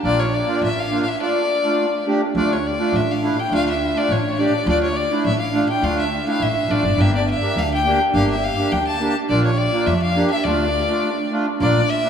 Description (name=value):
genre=klezmer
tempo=104 BPM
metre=2/4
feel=straight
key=D harmonic minor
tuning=A4 = 440 Hz
part: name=accordion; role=accompaniment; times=0.0-12.1 s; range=A3 to G4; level=-20 LUFS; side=right 2 dB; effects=none
part: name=upright bass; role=bass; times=0.0-11.8 s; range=G1 to F2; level=-23 LUFS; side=equal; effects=none
part: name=bright violin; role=melody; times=0.1-12.1 s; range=C#5 to A5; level=-21 LUFS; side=left 3 dB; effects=none
room=wet cathedral reverb, RT60 6.3 s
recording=in a vast, echoing space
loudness=-17 LUFS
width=side -8 dB against mid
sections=0.0-2.4 A section; 2.4-11.6 A section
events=break 11.0-11.6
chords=0.0 Bb; 1.2 Dm; 7.0 Gm; 9.3 Bb; 10.4 Dm